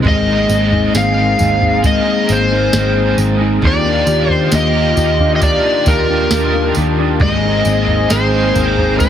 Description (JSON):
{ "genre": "dream pop", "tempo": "67 BPM", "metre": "4/4", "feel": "straight", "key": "unclear", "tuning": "A4 = 440 Hz", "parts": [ { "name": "cranked stack guitar", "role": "accompaniment", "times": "0.0-9.1 s", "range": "Eb3 to Bb4", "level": "-21 LUFS", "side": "right 5 dB", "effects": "overdrive, tremolo, ensemble chorus" }, { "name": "warm analog pad", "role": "sustained chords", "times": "0.0-9.1 s", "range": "Eb3 to Ab4", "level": "-20 LUFS", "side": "left 2 dB", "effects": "chorus" }, { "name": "mellow electric guitar", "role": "arpeggios", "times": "0.0-9.1 s", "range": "C3 to G4", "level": "-20 LUFS", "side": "left 5 dB", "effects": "analog chorus, tape echo" }, { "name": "soft vintage rhythm box", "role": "drums", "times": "0.0-9.1 s", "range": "kick drum, snare drum, tambourine, toms", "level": "-18 LUFS", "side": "right 1 dB", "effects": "none" }, { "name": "overdriven slide guitar", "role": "melody", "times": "0.1-9.1 s", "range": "Bb4 to F5", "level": "-16 LUFS", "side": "equal", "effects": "tape echo" }, { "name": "vintage muted picked electric bass", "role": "bass", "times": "0.1-9.1 s", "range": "Ab1 to Eb2", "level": "-18 LUFS", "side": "equal", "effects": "none" } ], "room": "light reverb, digital ambience", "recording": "heavily compressed radio sound", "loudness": "-11 LUFS", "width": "side -9 dB against mid", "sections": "0.0-9.1 A section", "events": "none", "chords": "0.0 Abadd9; 3.6 Ebmaj7; 7.2 Abadd9" }